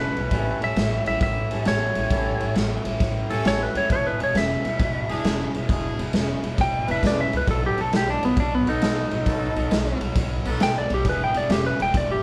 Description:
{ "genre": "electric blues shuffle", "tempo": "134 BPM", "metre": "4/4", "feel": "swing 67% on 8ths", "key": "unclear", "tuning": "A4 = 440 Hz", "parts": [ { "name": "clean lap steel guitar", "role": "melody", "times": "0.0-12.2 s", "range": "B3 to G5", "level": "-27 LUFS", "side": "equal", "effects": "none" }, { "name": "raw garage guitar", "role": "riff", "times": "0.0-12.2 s", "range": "E2 to G#3", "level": "-33 LUFS", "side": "equal", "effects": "overdrive" }, { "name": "bright horn section", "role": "stabs", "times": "0.0-11.6 s", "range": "B3 to B4", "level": "-36 LUFS", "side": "equal", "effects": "analog delay" }, { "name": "upright bass", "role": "bass", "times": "0.0-12.1 s", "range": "E1 to D#2", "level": "-31 LUFS", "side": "equal", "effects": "none" }, { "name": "raw garage drum kit", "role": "drums", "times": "0.2-12.1 s", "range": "kick drum, ride cymbal, snare drum", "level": "-27 LUFS", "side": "equal", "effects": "none" } ], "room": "moderate large studio reverb, RT60 0.9 s", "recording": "band playing live in one room", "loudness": "-23 LUFS", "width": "mono", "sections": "0.0-12.2 A section", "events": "electric slide guitar solo 0.0-12.2", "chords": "0.3 A7; 3.9 E7; 7.5 B7; 11.0 E7", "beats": "| 0.31 0.76 1.21 1.66 | 2.11 2.56 3.00 3.45 | 3.90 4.35 4.79 5.24 | 5.69 6.14 6.58 7.03 | 7.48 7.92 8.37 8.82 | 9.27 9.71 10.16 10.60 | 11.05 11.49 11.94" }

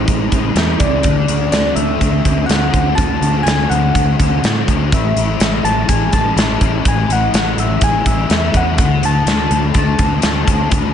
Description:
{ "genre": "rock, shoegaze and dream pop", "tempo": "124 BPM", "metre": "4/4", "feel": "straight", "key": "unclear", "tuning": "A4 = 437 Hz", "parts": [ { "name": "electric guitar through a small old amp", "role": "riff", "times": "0.0-10.9 s", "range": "A2 to F#4", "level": "-25 LUFS", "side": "right 12 dB", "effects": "reverse reverb" }, { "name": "thick fuzz guitar", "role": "riff", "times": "0.0-10.9 s", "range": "A2 to F#4", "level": "-19 LUFS", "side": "left 9 dB", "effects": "distortion, ensemble chorus" }, { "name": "growling fingered electric bass", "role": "bass", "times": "0.0-10.9 s", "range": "A1 to A2", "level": "-19 LUFS", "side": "right 1 dB", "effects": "overdrive" }, { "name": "big rock drum kit", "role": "drums", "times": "0.1-10.8 s", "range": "hi-hat, kick drum, snare drum", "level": "-17 LUFS", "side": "right 1 dB", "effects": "none" }, { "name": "soft struck synth lead", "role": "melody", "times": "0.8-10.9 s", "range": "D5 to A5", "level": "-20 LUFS", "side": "left 1 dB", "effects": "chorus, tape echo" } ], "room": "light reverb, small room ambience", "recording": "nothing above 10.3 kHz", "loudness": "-12 LUFS", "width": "side -8 dB against mid", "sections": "0.0-10.9 A section", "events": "none", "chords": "0.0 Amaj7; 1.1 Dmaj7; 4.9 Amaj7; 8.8 Dmaj7", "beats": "0.08 0.56 | 1.05 1.53 2.02 2.50 | 2.99 3.47 3.96 4.44 | 4.92 5.41 5.89 6.38 | 6.86 7.34 7.83 8.31 | 8.79 9.28 9.76 10.24 | 10.72" }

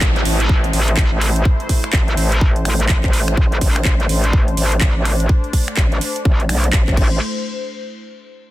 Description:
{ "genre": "bass house", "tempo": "125 BPM", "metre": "4/4", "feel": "swing 61% on 16ths", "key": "A minor", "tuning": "A4 = 436 Hz", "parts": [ { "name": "sweeping resonant pad", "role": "sustained chords", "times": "0.0-7.2 s", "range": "A3 to C5", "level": "-26 LUFS", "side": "left 1 dB", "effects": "chorus, sidechain pumping" }, { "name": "metallic wobble bass", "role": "bass", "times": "0.0-7.2 s", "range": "A1 to B1", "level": "-17 LUFS", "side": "equal", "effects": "chorus, sidechain pumping" }, { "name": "electronic kick drum", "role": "drums", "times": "0.0-7.1 s", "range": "none", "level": "-15 LUFS", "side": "equal", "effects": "small room ambience" }, { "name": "house drum kit", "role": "drums", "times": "0.0-7.1 s", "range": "crash cymbal, finger snaps, handclaps, hi-hat", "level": "-23 LUFS", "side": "right 1 dB", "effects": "small room ambience" }, { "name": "downlifter", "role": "sound effects", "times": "0.0-3.4 s", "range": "none", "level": "-28 LUFS", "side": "equal", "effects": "none" } ], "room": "digital ambience", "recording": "dense, heavily limited modern master", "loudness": "-14 LUFS", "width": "side -16 dB against mid", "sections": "0.0-7.2 A section; 7.2-8.5 B section", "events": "none", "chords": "0.0 Am; 7.2 N.C.", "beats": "0.01 0.49 0.97 | 1.45 1.93 2.41 2.89 | 3.37 3.85 4.33 4.81 | 5.29 5.77 6.25 6.73" }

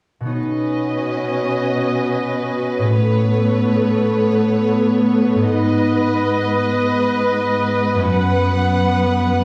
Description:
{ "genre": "cinematic, emotional film score for orchestra", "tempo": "69 BPM", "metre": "3/4", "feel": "rubato", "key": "B mixolydian", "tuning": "A4 = 440 Hz", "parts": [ { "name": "concert harp", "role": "arpeggios", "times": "0.2-9.4 s", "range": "F#2 to C#5", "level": "-24 LUFS", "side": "equal", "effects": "none" }, { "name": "muted studio violin section", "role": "second line", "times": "0.3-9.4 s", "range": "B4 to F#5", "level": "-25 LUFS", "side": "equal", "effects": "none" }, { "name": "muted studio viola section", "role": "accompaniment", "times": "0.3-9.4 s", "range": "B3 to B4", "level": "-22 LUFS", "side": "equal", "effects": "none" }, { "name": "muted studio cello section", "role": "bass", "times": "0.3-9.4 s", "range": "F#2 to B2", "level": "-24 LUFS", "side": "equal", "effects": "none" } ], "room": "wet recital hall reverb, RT60 1.6 s", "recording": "recorded in a church or concert hall, vinyl crackle", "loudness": "-18 LUFS", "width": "mono", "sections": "0.3-9.4 A section", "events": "none", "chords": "0.3 Badd9; 3.0 Aadd9; 5.5 G#m; 8.1 F#sus4", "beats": "| 0.32 1.22 2.10 | 2.97 3.83 4.67 | 5.53 6.39 7.26 | 8.13 9.01" }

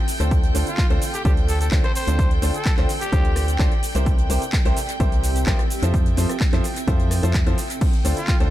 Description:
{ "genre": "piano house", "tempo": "128 BPM", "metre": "4/4", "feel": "straight", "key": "D minor", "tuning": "A4 = 440 Hz", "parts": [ { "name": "warm chamber violin section", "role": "sustained chords", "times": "0.0-8.5 s", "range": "G5", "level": "-32 LUFS", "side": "equal", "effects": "vintage 12-bit sampler grit, sidechain pumping" }, { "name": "granular cloud pad", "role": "texture", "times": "0.0-8.5 s", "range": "C4 to A5", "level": "-33 LUFS", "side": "right 2 dB", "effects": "built-in reverb, sidechain pumping" }, { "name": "house drum kit", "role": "drums", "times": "0.1-8.5 s", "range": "crash cymbal, handclaps, hi-hat, rim click, shaker", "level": "-30 LUFS", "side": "equal", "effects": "overdrive, tape echo" }, { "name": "bright upright piano", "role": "riff", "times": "0.2-8.5 s", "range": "C3 to C5", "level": "-28 LUFS", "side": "left 1 dB", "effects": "sidechain pumping, tape echo" }, { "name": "organ-like FM bass", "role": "bass", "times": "0.2-8.5 s", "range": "C2 to F2", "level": "-21 LUFS", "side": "equal", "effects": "sidechain pumping" }, { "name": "electronic kick drum", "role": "drums", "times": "0.3-8.4 s", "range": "none", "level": "-20 LUFS", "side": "equal", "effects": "overdrive" }, { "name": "growling trumpet", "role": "melody", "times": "0.7-3.5, 8.2-8.4 s", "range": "F4 to C5", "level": "-30 LUFS", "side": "equal", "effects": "tape echo" } ], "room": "little or no reverb", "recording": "echo-heavy mix", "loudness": "-18 LUFS", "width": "side -14 dB against mid", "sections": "0.0-8.5 A section", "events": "none", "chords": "0.0 Dm7; 3.8 C7; 5.7 Fmaj7; 7.8 Dm7", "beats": "| 0.31 0.78 1.25 1.72 | 2.19 2.66 3.13 3.59 | 4.06 4.53 5.00 5.47 | 5.94 6.41 6.88 7.34 | 7.81 8.28" }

